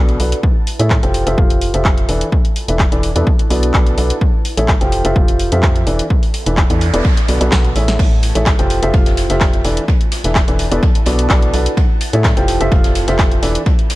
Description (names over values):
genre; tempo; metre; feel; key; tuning
piano house; 127 BPM; 4/4; straight; unclear; A4 = 440 Hz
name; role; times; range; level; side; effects
warm upright piano; riff; 0.0-13.6 s; B2 to G5; -18 LUFS; equal; sidechain pumping, low-pass filter, digital delay
organ-like FM bass; bass; 0.0-13.6 s; E1 to A2; -18 LUFS; equal; sidechain pumping
granular cloud pad; texture; 0.3-14.0 s; E4 to A5; -30 LUFS; right 2 dB; none
house drum kit; drums; 0.1-14.0 s; crash cymbal, handclaps, hi-hat, snare drum; -21 LUFS; equal; none
electronic kick drum; drums; 0.4-13.8 s; none; -14 LUFS; equal; none
noise sweep; sound effects; 6.3-8.0 s; none; -28 LUFS; right 3 dB; none
loose indie drum kit; drums; 8.0-14.0 s; ride cymbal, snare drum; -29 LUFS; right 1 dB; sidechain pumping on cymbals, high-pass filter on cymbals, high-pass filter on snare, high-pass filter on room
room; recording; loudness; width
small room ambience; dark, warm production; -12 LUFS; side -18 dB against mid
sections
0.0-14.0 A section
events
noise sweep 6.3-8.0; drum fill 7.5-8.0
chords
0.4 Amaj7; 1.1 Fmaj9; 2.1 E7sus4; 3.3 Bm7; 4.2 Amaj7; 4.9 Fmaj9; 5.9 E7sus4; 7.0 Bm7; 8.0 Amaj7; 8.7 Fmaj9; 9.6 E7sus4; 10.8 Bm7; 11.8 Amaj7; 12.5 Fmaj9; 13.4 E7sus4